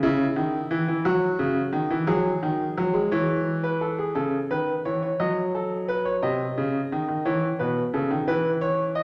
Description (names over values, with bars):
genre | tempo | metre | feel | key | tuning
classical, baroque-style two-part invention for grand piano | 58 BPM (dotted quarters) | 6/8 | straight | unclear | A4 = 436 Hz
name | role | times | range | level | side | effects
bright baby grand piano | solo | 0.0-9.0 s | B2 to D#5 | -25 LUFS | equal | none
room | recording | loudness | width
wet recital hall reverb, RT60 1.7 s | none | -25 LUFS | mono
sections
0.0-4.2 A section; 4.2-9.0 B section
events
none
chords
0.0 C#m; 1.0 F#5; 2.1 G#5; 3.1 C#m/E; 4.2 A/C#; 5.2 D#dim/F#; 6.2 Cm; 7.3 C#m; 8.3 E5